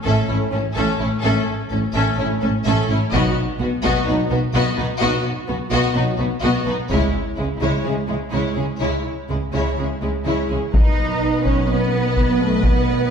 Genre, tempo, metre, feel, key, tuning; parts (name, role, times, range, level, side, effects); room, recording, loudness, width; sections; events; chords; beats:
cinematic, epic orchestral film score; 127 BPM; 4/4; straight; A4 = 436 Hz
warm symphonic violin section; second line; 0.0-13.1 s; G#3 to B4; -25 LUFS; left 3 dB
clear symphonic viola section; accompaniment; 0.0-13.1 s; G#3 to B4; -26 LUFS; equal
warm symphonic violin section; melody; 0.1-13.1 s; E4 to E5; -30 LUFS; left 3 dB
warm symphonic cello section; bass; 0.1-13.1 s; A2 to D#4; -25 LUFS; right 2 dB
warm symphonic double bass section; bass; 0.1-13.1 s; A1 to C#2; -23 LUFS; right 2 dB
dark French horn section; sustained chords; 0.3-13.1 s; F#3 to E4; -27 LUFS; left 1 dB
taiko ensemble; drums; 3.1-4.1, 6.9-7.8, 10.7-13.1 s; -21 LUFS; equal
bright trombone section; sustained chords; 10.7-13.1 s; D#3 to B3; -29 LUFS; right 2 dB
wet recital hall reverb, RT60 1.4 s; heard from further back in the room; -17 LUFS; side -7 dB against mid
0.0-10.7 A section; 10.7-13.1 B section
build-up 0.0-10.7
0.0 A; 3.1 B; 6.9 C#m; 10.7 B
0.29 0.76 | 1.23 1.70 2.18 2.65 | 3.12 3.59 4.07 4.53 | 5.00 5.48 5.95 6.42 | 6.90 7.37 7.84 8.32 | 8.80 9.29 9.78 10.26 | 10.74 11.21 11.69 12.17 | 12.64